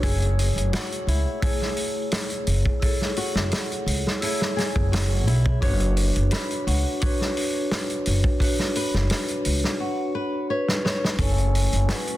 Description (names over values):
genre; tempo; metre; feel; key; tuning
trip hop; 86 BPM; 4/4; straight; F# minor; A4 = 440 Hz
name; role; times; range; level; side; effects
vibraphone with medium mallets; accompaniment; 0.0-12.2 s; A3 to G#5; -28 LUFS; equal; harmonic tremolo, tape echo
flamenco guitar; arpeggios; 0.0-12.2 s; E4 to C#5; -33 LUFS; left 2 dB; vintage 12-bit sampler grit, low-pass filter, tape echo
upright bass; bass; 0.0-11.9 s; F#1 to C#2; -22 LUFS; equal; tube saturation
loose indie drum kit; drums; 0.0-12.2 s; hi-hat, kick drum, snare drum; -25 LUFS; equal; none
vibraphone with medium mallets; melody; 10.5-12.2 s; B4 to C#5; -30 LUFS; left 1 dB; none
room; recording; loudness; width
small room reverb; dense, heavily limited modern master; -21 LUFS; side -15 dB against mid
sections
0.0-11.2 A section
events
filter sweep on nylon-string guitar 0.0-11.2; drum fill 10.7-11.2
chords
0.0 F#m9; 5.6 Bmadd9/F#; 11.2 F#m7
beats
| 0.04 0.73 1.43 2.13 | 2.83 3.52 4.22 4.92 | 5.62 6.32 7.01 7.71 | 8.41 9.11 9.80 10.50 | 11.20 11.90